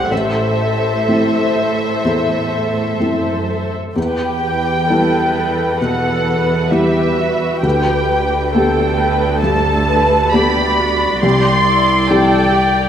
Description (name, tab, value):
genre	cinematic, emotional film score for orchestra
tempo	61-69 BPM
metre	4/4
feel	rubato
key	E minor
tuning	A4 = 439 Hz
part	muted studio violin section	melody	0.0-12.9 s	E5 to C6	-18 LUFS	equal	none
part	muted symphonic violin section	second line	0.0-12.9 s	A4 to D5	-22 LUFS	left 2 dB	none
part	felt-muted upright piano	accompaniment	0.0-12.9 s	A1 to G4	-19 LUFS	left 1 dB	none
part	muted studio viola section	accompaniment	0.0-12.9 s	E4 to B4	-23 LUFS	right 2 dB	none
part	muted symphonic cello section	bass	0.0-12.9 s	C2 to A2	-20 LUFS	right 2 dB	none
room	wet scoring stage reverb, RT60 1.6 s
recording	none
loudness	-13 LUFS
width	side -9 dB against mid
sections	0.0-12.9 A section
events	none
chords	0.1 Am; 4.0 Em; 7.6 Gadd9/D; 11.2 C